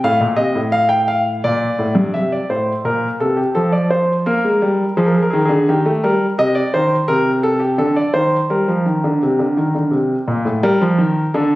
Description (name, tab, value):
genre	classical, baroque-style two-part invention for grand piano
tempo	85 BPM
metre	3/4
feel	straight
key	G minor from 6.4 s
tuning	A4 = 440 Hz
part	warm concert grand piano	solo	0.0-11.6 s	G2 to G5	-14 LUFS	equal	none
room	moderate stone room reverb, RT60 1.0 s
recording	recorded on a phone in the room, studio reverb, compression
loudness	-14 LUFS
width	side -17 dB against mid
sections	0.0-2.1 A section; 2.1-10.6 B section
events	none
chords	0.0 F7/A; 1.4 Bb; 2.1 C7; 3.5 F; 4.2 Bb7(no3); 5.7 Eb; 6.4 Am7b5/C (rootless); 7.8 D5; 8.5 Gm (rootless); 10.6 Gm